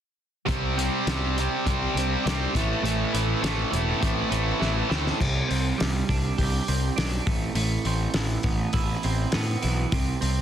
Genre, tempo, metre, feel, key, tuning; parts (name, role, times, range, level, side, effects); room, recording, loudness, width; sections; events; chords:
quiet-loud alternative rock; 102 BPM; 4/4; straight; C major; A4 = 440 Hz
twelve-string electric guitar; arpeggios; 0.5-10.4 s; A2 to G4; -30 LUFS; right 8 dB; tape echo
overdriven electric guitar; riff; 0.5-5.2 s; A2 to C4; -26 LUFS; equal
fuzz picked electric bass; bass; 0.5-10.4 s; E1 to A2; -27 LUFS; left 1 dB; overdrive
loose indie drum kit; drums; 0.5-10.4 s; crash cymbal, hi-hat, kick drum, snare drum; -28 LUFS; left 1 dB
little or no reverb; dense, heavily limited modern master; -23 LUFS; side -10 dB against mid
0.5-5.2 A section; 5.2-10.4 B section
drum fill 4.6-5.2
0.5 Csus2; 2.6 Amadd9; 5.2 Csus2; 7.3 Amadd9; 9.9 N.C.